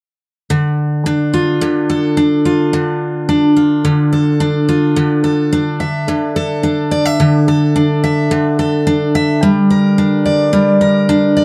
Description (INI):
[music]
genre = pop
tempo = 108 BPM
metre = 4/4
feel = straight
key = D minor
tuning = A4 = 444 Hz
[part]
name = picked steel-string acoustic guitar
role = accompaniment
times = 0.5-11.4 s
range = D3 to E5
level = -14 LUFS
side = equal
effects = none
[sound]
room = moderate studio reverb, RT60 0.7 s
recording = dark, warm production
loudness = -14 LUFS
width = mono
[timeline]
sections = 0.5-5.0 A section; 5.0-11.4 B section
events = none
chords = 0.5 Dm; 5.0 Dsus2; 9.4 Gm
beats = | 0.51 1.06 1.62 2.18 | 2.73 3.29 3.85 4.41 | 4.96 5.52 6.08 6.64 | 7.19 7.75 8.31 8.87 | 9.43 9.98 10.54 11.10